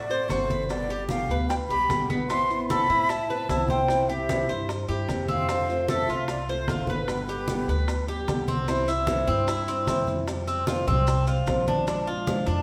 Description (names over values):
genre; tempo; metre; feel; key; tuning
latin, Cuban son and guajira; 150 BPM; 4/4; straight; C major; A4 = 441 Hz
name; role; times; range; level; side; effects
breathy concert flute; melody; 0.0-8.3 s; B4 to C6; -30 LUFS; equal; none
Cuban tres; arpeggios; 0.0-12.6 s; B3 to C5; -32 LUFS; equal; none
upright bass; bass; 0.0-12.6 s; G1 to A2; -33 LUFS; equal; none
flamenco guitar; accompaniment; 0.1-12.6 s; B2 to G4; -33 LUFS; equal; none
congas; percussion; 0.1-12.6 s; none; -35 LUFS; equal; none
maracas; percussion; 0.1-12.6 s; none; -48 LUFS; equal; none
bongos; percussion; 0.3-12.5 s; none; -40 LUFS; equal; none
room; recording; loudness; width
wet stone room reverb, RT60 1.4 s; band playing live in one room; -26 LUFS; mono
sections
0.0-8.7 A section; 8.7-12.6 B section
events
none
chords
0.0 D7; 0.7 G; 2.3 Amadd9; 3.9 C7; 5.5 F6; 7.1 G; 8.7 C; 10.3 Fsus2; 11.9 Bb7